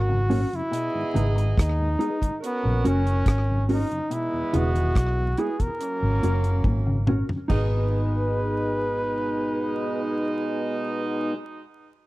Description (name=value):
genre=roots reggae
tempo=71 BPM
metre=4/4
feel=straight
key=G# minor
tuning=A4 = 436 Hz
part: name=brilliant trombone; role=melody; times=0.0-11.3 s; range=B3 to B4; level=-29 LUFS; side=equal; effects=tape echo
part: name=mellow horn section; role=second line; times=0.0-11.3 s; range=B2 to D#5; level=-31 LUFS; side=right 3 dB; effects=tape echo
part: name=electric guitar with an envelope filter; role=arpeggios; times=0.0-7.7 s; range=A#2 to D#3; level=-32 LUFS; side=left 2 dB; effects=none
part: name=vintage muted fingered electric bass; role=bass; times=0.0-11.3 s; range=E1 to D#2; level=-24 LUFS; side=equal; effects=none
part: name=mellow tonewheel organ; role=accompaniment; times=0.1-11.4 s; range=E2 to G#4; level=-31 LUFS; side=left 1 dB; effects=overdrive, chorus vibrato, slow rotary speaker, slapback echo
part: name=mellow electric guitar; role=accompaniment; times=0.3-11.4 s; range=C#4 to B4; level=-30 LUFS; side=right 1 dB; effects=tape echo
part: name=deep reggae drum kit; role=drums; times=0.3-7.7 s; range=crash cymbal, hi-hat, kick drum, rim click, toms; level=-25 LUFS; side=equal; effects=none
room=little or no reverb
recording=dry, close 1970s-style studio recording, vinyl crackle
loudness=-22 LUFS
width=side -18 dB against mid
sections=0.0-7.5 A section; 7.5-10.9 B section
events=drum fill 6.7-7.5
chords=0.0 F#; 0.7 G#m; 2.4 F#; 4.1 E; 5.8 F#; 7.5 G#m